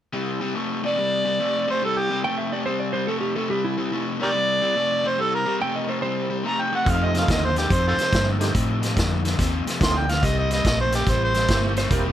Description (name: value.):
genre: electric blues shuffle.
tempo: 143 BPM.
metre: 4/4.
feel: swing 66% on 8ths.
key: unclear.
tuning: A4 = 443 Hz.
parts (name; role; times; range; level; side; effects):
raw garage guitar; riff; 0.1-12.1 s; F2 to A3; -26 LUFS; left 2 dB; overdrive.
overdriven harmonica; melody; 0.9-11.6 s; F4 to C6; -24 LUFS; right 1 dB; none.
clean lap steel guitar; second line; 2.2-6.4, 11.8-12.1 s; E4 to G5; -27 LUFS; right 3 dB; none.
tonewheel organ; accompaniment; 6.8-12.1 s; A3 to G4; -29 LUFS; right 4 dB; slow rotary speaker, overdrive, chorus vibrato.
vintage muted fingered electric bass; bass; 6.9-12.1 s; E1 to A2; -24 LUFS; equal; none.
vintage drum kit; drums; 6.9-12.0 s; hi-hat, kick drum, snare drum; -24 LUFS; equal; none.
room: little or no reverb.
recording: none.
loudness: -20 LUFS.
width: side -11 dB against mid.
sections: 0.1-12.1 A section.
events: none.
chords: 0.1 C5; 6.9 F7; 10.2 C7.